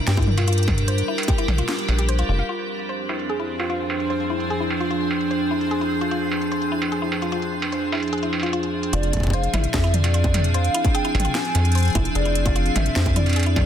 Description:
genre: IDM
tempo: 149 BPM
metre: 4/4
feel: straight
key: F melodic minor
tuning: A4 = 440 Hz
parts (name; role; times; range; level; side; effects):
- icy glass pad; sustained chords; 0.0-13.7 s; F2 to Bb4; -25 LUFS; right 1 dB; chorus, built-in reverb, tremolo
- mallet-like synth pluck; arpeggios; 0.1-13.5 s; E4 to F5; -29 LUFS; left 3 dB; chorus, phaser, vintage 12-bit sampler grit, tape echo
- deep acid bass; bass; 0.1-2.4, 8.9-13.7 s; F1 to G2; -20 LUFS; equal; tube saturation
- industrial drum kit; drums; 0.1-13.7 s; hi-hat, snare drum, struck metal, toms; -28 LUFS; right 1 dB; low-pass filter on hats, small room ambience, low-pass filter on perc, low-pass filter on snare, low-pass filter on toms
- electronic kick drum; drums; 0.2-1.4, 9.1-13.6 s; none; -22 LUFS; equal; distortion, small room ambience
- bubbling stepped-filter texture; texture; 2.5-8.9 s; C4 to C5; -32 LUFS; equal; chorus, built-in reverb
- warbly nostalgic lead; melody; 8.9-13.7 s; D5 to Ab5; -27 LUFS; left 1 dB; analog chorus, tape echo
room: moderate echo chamber reverb, RT60 1.4 s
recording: dense, heavily limited modern master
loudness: -19 LUFS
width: side -9 dB against mid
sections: 0.0-2.5 A section; 2.5-8.9 B section; 8.9-13.7 C section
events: kick drops out 1.7-2.5; filter sweep on synth arpeggio sound 2.5-8.9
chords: 0.0 Gm7; 2.5 Fm6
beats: 0.07 0.48 | 0.88 1.28 1.68 2.09 | 2.49 2.89 3.29 3.70 | 4.10 4.50 4.91 5.31 | 5.71 6.11 6.52 6.92 | 7.32 7.72 8.13 8.53 | 8.93 9.34 9.74 10.14 | 10.54 10.95 11.35 11.75 | 12.15 12.56 12.96 13.36

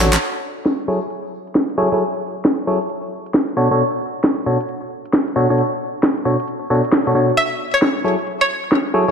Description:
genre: UK garage, two-step garage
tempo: 134 BPM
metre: 4/4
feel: swing 64% on 16ths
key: F# minor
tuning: A4 = 439 Hz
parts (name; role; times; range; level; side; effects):
- FM electric piano; stabs; 0.0-9.1 s; B2 to C#5; -19 LUFS; equal; chorus, low-pass filter, ping-pong delay
- garage drum kit; drums; 0.1-9.1 s; crash cymbal, handclaps, hi-hat, snare drum; -18 LUFS; equal; overdrive, low-pass filter on hats, low-pass filter on snare, low-pass filter on cymbals, gated reverb
- string-like resonator pluck; melody; 7.4-8.5 s; C#5 to E5; -19 LUFS; equal; chorus, ping-pong delay
room: wet lush hall reverb, RT60 2.1 s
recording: bright 1980s-style digital production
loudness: -16 LUFS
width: side -6 dB against mid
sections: 0.2-9.1 A section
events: drum fill 0.0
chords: 0.2 F#m9; 3.6 Bm9; 7.4 F#m9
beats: | 0.21 0.66 1.10 1.55 | 2.00 2.45 2.90 3.34 | 3.79 4.24 4.69 5.13 | 5.58 6.03 6.48 6.93 | 7.37 7.82 8.27 8.72

